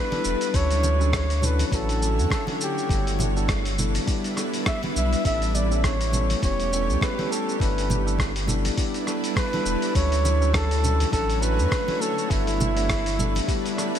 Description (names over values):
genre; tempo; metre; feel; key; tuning
sunset chillout; 102 BPM; 4/4; swing 56% on 16ths; G lydian; A4 = 440 Hz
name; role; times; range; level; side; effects
breathy flugelhorn; melody; 0.0-14.0 s; E4 to E5; -28 LUFS; equal; tape echo, slapback echo
bright tine electric piano; accompaniment; 0.0-14.0 s; F#3 to B4; -30 LUFS; moving between left 5 dB and right 5 dB; auto-pan, vintage 12-bit sampler grit, tape echo, slapback echo
shimmering ambient pad; sustained chords; 0.0-14.0 s; D3 to C#5; -30 LUFS; equal; chorus, built-in reverb
dusty soul sampler-style drum kit; drums; 0.1-14.0 s; hi-hat, rim click, shaker; -30 LUFS; equal; none
congas; percussion; 0.1-13.5 s; none; -31 LUFS; right 2 dB; none
warm sub bass; bass; 0.3-13.4 s; E1 to F#2; -24 LUFS; equal; none
electronic kick drum; drums; 0.5-13.6 s; none; -27 LUFS; equal; none
room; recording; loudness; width
light reverb; none; -21 LUFS; side -9 dB against mid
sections
0.0-14.0 A section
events
none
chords
0.0 G6; 0.5 Dmaj7; 2.9 G6; 5.2 A7; 7.6 G6; 10.0 Dmaj7; 12.3 G6